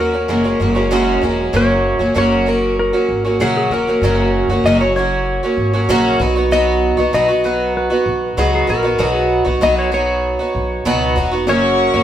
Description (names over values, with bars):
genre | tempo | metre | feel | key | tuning
acoustic pop | 96 BPM | 4/4 | straight | B major | A4 = 439 Hz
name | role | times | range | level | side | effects
clean lap steel guitar | melody | 0.0-12.0 s | G#4 to D#5 | -19 LUFS | left 1 dB | none
picked twelve-string acoustic guitar | accompaniment | 0.0-12.0 s | F#2 to F#4 | -16 LUFS | right 1 dB | none
upright bass | bass | 0.0-12.0 s | E1 to D#2 | -21 LUFS | equal | none
barky reed electric piano | accompaniment | 11.5-12.0 s | A#3 to C#5 | -22 LUFS | left 7 dB | overdrive, fast tremolo
warm studio string section | sustained chords | 11.5-12.0 s | A#4 to C#6 | -20 LUFS | left 4 dB | none
room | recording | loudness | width
moderate large studio reverb, RT60 1.2 s | band playing live in one room | -13 LUFS | side -11 dB against mid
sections
0.0-1.5 A section; 1.5-12.0 B section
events
none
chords
0.3 F#add9; 6.2 B; 11.5 F#